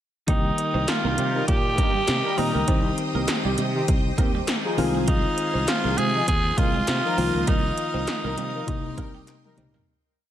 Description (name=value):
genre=1980s-style pop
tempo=100 BPM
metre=4/4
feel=swing 55% on 16ths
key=C minor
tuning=A4 = 440 Hz
part: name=raspy tenor saxophone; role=melody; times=0.3-9.6 s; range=Eb4 to Ab4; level=-27 LUFS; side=right 1 dB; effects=tape echo
part: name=soft electric-piano-like synth keys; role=accompaniment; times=0.3-9.9 s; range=C3 to G4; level=-29 LUFS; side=left 4 dB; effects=chorus
part: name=string machine, full ensemble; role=sustained chords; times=0.3-9.9 s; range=Bb4 to Eb6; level=-34 LUFS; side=left 1 dB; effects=ensemble chorus
part: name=twelve-string electric guitar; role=riff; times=0.3-9.8 s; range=F3 to Eb4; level=-32 LUFS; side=right 7 dB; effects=lush chorus
part: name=sustaining fretless electric bass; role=bass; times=0.3-9.8 s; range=C2 to C3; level=-28 LUFS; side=equal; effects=none
part: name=80s electronic pad drums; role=drums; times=0.3-9.9 s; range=hi-hat, kick drum, snare drum, toms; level=-25 LUFS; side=equal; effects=gated reverb on snare and toms, gated reverb
part: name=group handclap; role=percussion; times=0.9-9.4 s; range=none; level=-41 LUFS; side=left 4 dB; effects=none
part: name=analog synth brass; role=stabs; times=1.0-9.9 s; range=Eb3 to Bb4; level=-32 LUFS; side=left 1 dB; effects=chorus, tape echo
room=light reverb, digital ambience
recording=none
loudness=-21 LUFS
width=side -11 dB against mid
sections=0.3-9.9 chorus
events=fade-out 7.5-9.9; drum fill 9.3-9.9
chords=0.3 Eb/C; 2.7 Cm; 4.8 Fm7/C; 7.2 Bbsus4/C; 8.7 Cm7